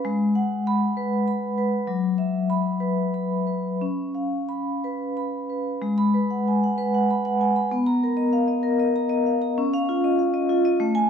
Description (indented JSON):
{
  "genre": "classical, contemporary piece for solo vibraphone",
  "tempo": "88-100 BPM",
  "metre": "3/4",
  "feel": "rubato",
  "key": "G# dorian",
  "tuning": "A4 = 440 Hz",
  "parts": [
    { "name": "vibraphone with medium hard mallets", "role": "solo", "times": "0.0-11.1 s", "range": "F#3 to B5", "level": "-21 LUFS", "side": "left 1 dB", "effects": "none" }
  ],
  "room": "wet recital hall reverb, RT60 1.5 s",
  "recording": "dark, warm production",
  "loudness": "-21 LUFS",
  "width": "side -7 dB against mid",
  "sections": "0.0-5.8 A section; 5.8-11.1 B section",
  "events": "none",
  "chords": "0.1 G#m7; 1.9 F#7sus4; 3.8 C#7; 5.8 G#m7; 7.7 Bmaj7; 9.6 C#add9"
}